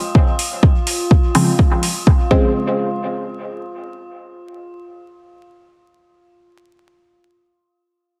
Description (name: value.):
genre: dub techno.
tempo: 125 BPM.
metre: 4/4.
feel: straight.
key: unclear.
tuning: A4 = 441 Hz.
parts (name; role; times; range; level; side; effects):
metallic inharmonic drone; texture; 0.0-2.6 s; F4; -30 LUFS; equal; chorus, built-in reverb, sidechain pumping.
electronic kick drum; drums; 0.1-2.4 s; none; -15 LUFS; equal; overdrive.
electronic hi-hat; drums; 0.4-1.9 s; none; -25 LUFS; equal; overdrive.
filtered dub chord stab; stabs; 1.3-7.2 s; Db3 to C4; -22 LUFS; equal; chorus, phaser, sidechain pumping, dub echo.
room: light reverb.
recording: heavily compressed radio sound, vinyl crackle.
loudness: -16 LUFS.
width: mono.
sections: 0.0-2.5 A section; 2.5-6.4 B section.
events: none.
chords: 0.0 N.C.; 2.5 Dbmaj7.